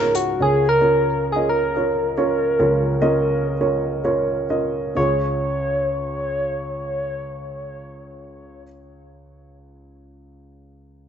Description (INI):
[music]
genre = pop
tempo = 95-112 BPM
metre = 4/4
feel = straight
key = unclear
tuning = A4 = 439 Hz
[part]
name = soft struck synth lead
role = melody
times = 0.0-8.6 s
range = Gb4 to Db5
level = -21 LUFS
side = equal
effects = chorus, plate reverb, tape echo
[part]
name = dark upright piano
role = accompaniment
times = 0.0-11.1 s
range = Db2 to Eb5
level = -22 LUFS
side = right 2 dB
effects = plate reverb
[sound]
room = moderate studio reverb, RT60 0.7 s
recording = nothing above 8.0 kHz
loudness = -18 LUFS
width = side -8 dB against mid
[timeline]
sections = 0.0-5.0 A section; 5.0-10.0 B section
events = slowing down 0.4-5.0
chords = 0.4 Bbm/Db; 5.0 Db